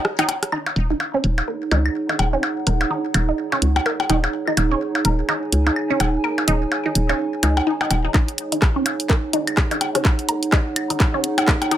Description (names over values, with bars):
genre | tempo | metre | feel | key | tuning
minimal techno | 126 BPM | 4/4 | swing 59% on 16ths | Eb minor | A4 = 440 Hz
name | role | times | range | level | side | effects
garage drum kit | drums | 0.0-11.8 s | handclaps, hi-hat, rim click | -22 LUFS | equal | low-pass filter on hats, low-pass filter on snare
warbly tape-like pad | texture | 0.0-11.8 s | Eb4 to Bb5 | -25 LUFS | right 2 dB | chorus, built-in reverb, sidechain pumping
resonant blip pluck | riff | 0.2-11.8 s | Db4 to Bb4 | -24 LUFS | right 1 dB | phaser, sidechain pumping, digital delay
percussion blips and claves | percussion | 0.2-11.8 s | none | -23 LUFS | left 2 dB | overdrive, digital delay
hollow knocking FM bass | bass | 0.8-8.1 s | Eb1 to Db2 | -20 LUFS | equal | sidechain pumping
electronic kick drum | drums | 8.1-11.6 s | none | -18 LUFS | equal | none
room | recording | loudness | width
wet studio reverb, RT60 0.6 s | none | -18 LUFS | side -11 dB against mid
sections
0.5-8.1 A section; 8.1-11.8 B section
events
break 0.0-0.5; filter sweep on synth arpeggio sound 0.5-8.1, 8.1-11.8; build-up 8.1-11.8; drum fill 8.1-11.8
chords
0.0 N.C.; 0.5 Ebm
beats
0.05 | 0.53 1.00 1.48 1.95 | 2.43 2.91 3.38 3.86 | 4.33 4.81 5.29 5.76 | 6.24 6.71 7.19 7.67 | 8.14 8.62 9.10 9.57 | 10.05 10.53 11.00 11.48